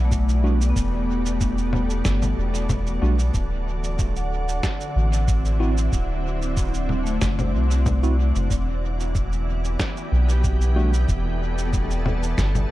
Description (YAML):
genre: ambient dub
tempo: 93 BPM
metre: 4/4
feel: swing 54% on 16ths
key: E minor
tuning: A4 = 436 Hz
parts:
  - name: soft additive organ-like pad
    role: sustained chords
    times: 0.0-12.7 s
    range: D3 to D5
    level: -30 LUFS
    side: right 1 dB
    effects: ensemble chorus, built-in reverb
  - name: soft dub sub bass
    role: bass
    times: 0.0-12.7 s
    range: D1 to C2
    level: -22 LUFS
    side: equal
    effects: none
  - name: vibraphone with medium mallets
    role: arpeggios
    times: 0.1-8.6 s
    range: A3 to F#5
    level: -31 LUFS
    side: left 4 dB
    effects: dub echo
  - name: electronic kick drum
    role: drums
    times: 0.1-12.5 s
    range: none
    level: -25 LUFS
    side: equal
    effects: none
  - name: electronic shaker, congas and snare drum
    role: drums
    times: 0.1-12.7 s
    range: none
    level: -30 LUFS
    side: equal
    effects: dub echo
  - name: tine electric piano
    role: stabs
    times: 0.4-10.9 s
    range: G3 to F#4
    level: -32 LUFS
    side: right 2 dB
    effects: none
room: little or no reverb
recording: dark, warm production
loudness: -20 LUFS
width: side -16 dB against mid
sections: 0.0-12.7 A section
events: none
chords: 0.0 Em11; 3.3 D7; 8.5 Em11